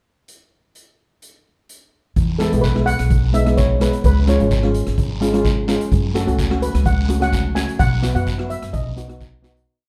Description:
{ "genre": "calypso", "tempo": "128 BPM", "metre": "4/4", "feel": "straight", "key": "E major", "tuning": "A4 = 440 Hz", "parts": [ { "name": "street-band drum kit", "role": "drums", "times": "0.3-9.7 s", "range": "hi-hat, kick drum, rim click", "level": "-24 LUFS", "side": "equal", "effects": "none" }, { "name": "upright bass", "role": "bass", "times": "2.2-9.6 s", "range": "G#1 to F#2", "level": "-22 LUFS", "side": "equal", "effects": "none" }, { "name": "guiro", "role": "percussion", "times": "2.2-9.6 s", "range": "none", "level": "-36 LUFS", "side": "equal", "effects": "none" }, { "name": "steel pan", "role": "melody", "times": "2.4-9.4 s", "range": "A4 to G#5", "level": "-27 LUFS", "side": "equal", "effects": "none" }, { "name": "steel pan", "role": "accompaniment", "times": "2.4-9.7 s", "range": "G#3 to F#4", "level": "-24 LUFS", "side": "equal", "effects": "none" } ], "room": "light reverb", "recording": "dark, warm production", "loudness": "-18 LUFS", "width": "mono", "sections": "0.3-2.2 pickup bar; 2.2-9.7 verse", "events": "fade-out 7.8-9.7", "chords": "0.3 N.C.; 2.2 Eadd9; 4.0 C#; 5.9 F#m; 7.8 Bsus4; 8.7 B", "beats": "| 0.28 0.75 1.22 1.69 | 2.16 2.63 3.10 3.57 | 4.04 4.51 4.98 5.45 | 5.92 6.39 6.86 7.33 | 7.80 8.27 8.74 9.21" }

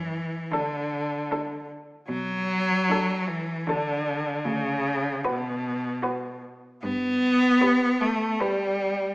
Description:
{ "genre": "classical, lyrical piece for cello ensemble", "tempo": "76 BPM", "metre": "3/4", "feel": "rubato", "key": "unclear", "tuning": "A4 = 444 Hz", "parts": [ { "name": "rich cello", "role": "accompaniment", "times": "0.0-9.1 s", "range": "B2 to B3", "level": "-24 LUFS", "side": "equal", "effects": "none" }, { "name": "rich cello", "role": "bass", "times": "0.0-7.4 s", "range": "D2 to B2", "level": "-35 LUFS", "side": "equal", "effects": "none" }, { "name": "rich cello", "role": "melody", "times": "0.5-9.0 s", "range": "A4 to B4", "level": "-31 LUFS", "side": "left 1 dB", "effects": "none" }, { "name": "rich cello", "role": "second line", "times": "0.5-9.0 s", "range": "D4 to G4", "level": "-35 LUFS", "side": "right 2 dB", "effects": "none" } ], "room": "wet recital hall reverb, RT60 1.4 s", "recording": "small speaker sound", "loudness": "-23 LUFS", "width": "side -23 dB against mid", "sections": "0.0-9.1 A section", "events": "none", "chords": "0.0 D/F#; 2.1 Bm7; 4.5 Bm/D; 6.8 G", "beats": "0.51 1.30 | 2.08 2.89 3.67 | 4.46 5.25 6.03 | 6.81 7.60 8.40" }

